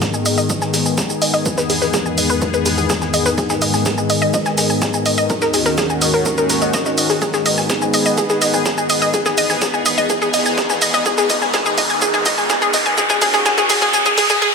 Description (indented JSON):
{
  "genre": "melodic techno",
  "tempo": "125 BPM",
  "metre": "4/4",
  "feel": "straight",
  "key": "G# minor",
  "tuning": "A4 = 439 Hz",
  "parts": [
    { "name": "sweeping resonant pad", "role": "sustained chords", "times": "0.0-14.4 s", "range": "D#2 to G#4", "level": "-21 LUFS", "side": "left 2 dB", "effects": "chorus, sidechain pumping" },
    { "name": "analog pluck", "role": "arpeggios", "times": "0.0-14.5 s", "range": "G#4 to G#5", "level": "-18 LUFS", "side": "equal", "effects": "chorus, sidechain pumping, ping-pong delay" },
    { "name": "analog drone", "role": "drone", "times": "0.3-14.4 s", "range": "G#2 to D#3", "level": "-27 LUFS", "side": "equal", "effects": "chorus, sidechain pumping" },
    { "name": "breakbeat sampler-style drum kit", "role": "drums", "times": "0.0-14.4 s", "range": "ride cymbal, snare drum", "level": "-27 LUFS", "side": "right 2 dB", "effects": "high-pass filter on cymbals, studio reverb, high-pass filter on snare" },
    { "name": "electronic kick drum", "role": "drums", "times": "0.0-14.4 s", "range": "none", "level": "-26 LUFS", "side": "equal", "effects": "high-pass filter on kick, studio reverb" },
    { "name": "punchy analog drum machine", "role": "drums", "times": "0.0-14.4 s", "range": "hi-hat, shaker, toms", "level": "-21 LUFS", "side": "right 1 dB", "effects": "sidechain pumping on perc, high-pass filter on perc, studio reverb, sidechain pumping on toms, high-pass filter on toms, sidechain pumping on hats, high-pass filter on hats" },
    { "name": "riser", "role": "sound effects", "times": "8.8-14.5 s", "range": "none", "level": "-22 LUFS", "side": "equal", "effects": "none" }
  ],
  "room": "moderate huge ambient reverb, RT60 6.2 s",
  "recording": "high-pass filter",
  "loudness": "-14 LUFS",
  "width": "side -5 dB against mid",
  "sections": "0.0-14.5 A section",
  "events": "build-up 0.0-14.5; filter sweep on synth arpeggio sound 0.0-14.5; drum fill 7.2-14.4; riser 8.8-14.5",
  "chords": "0.0 G#m; 1.5 E; 3.4 G#m; 5.3 D#m7; 7.2 G#m; 9.1 E; 11.1 G#m; 13.0 D#m7"
}